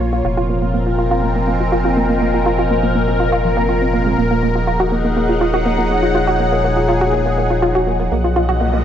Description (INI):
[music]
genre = techno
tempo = 122 BPM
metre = 4/4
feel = straight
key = unclear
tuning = A4 = 440 Hz
[part]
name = lush unison pad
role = sustained chords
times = 0.0-8.8 s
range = Bb3 to Gb5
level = -20 LUFS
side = equal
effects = chorus, phaser
[part]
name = woody wave-folded pluck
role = arpeggios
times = 0.0-8.8 s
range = F3 to Gb4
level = -19 LUFS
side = right 1 dB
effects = wide subtle chorus, tape echo
[part]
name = round analog bass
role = bass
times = 0.0-8.8 s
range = Eb1 to B1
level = -21 LUFS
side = equal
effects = none
[part]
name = analog drone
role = drone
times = 0.0-8.8 s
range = Bb2 to F3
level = -23 LUFS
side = equal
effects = chorus
[part]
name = warbly tape-like pad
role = texture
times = 0.0-8.8 s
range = Ab4 to Ab5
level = -22 LUFS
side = left 3 dB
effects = chorus, built-in reverb
[part]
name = riser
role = sound effects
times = 8.4-8.8 s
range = none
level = -29 LUFS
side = equal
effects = none
[sound]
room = moderate digital room reverb, RT60 1.2 s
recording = nothing above 8.0 kHz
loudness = -14 LUFS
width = side -9 dB against mid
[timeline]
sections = 0.0-8.8 A section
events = filter sweep on synth pluck 0.0-8.8; riser 8.4-8.8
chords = 0.2 Fsus4; 4.2 Ebm; 8.1 B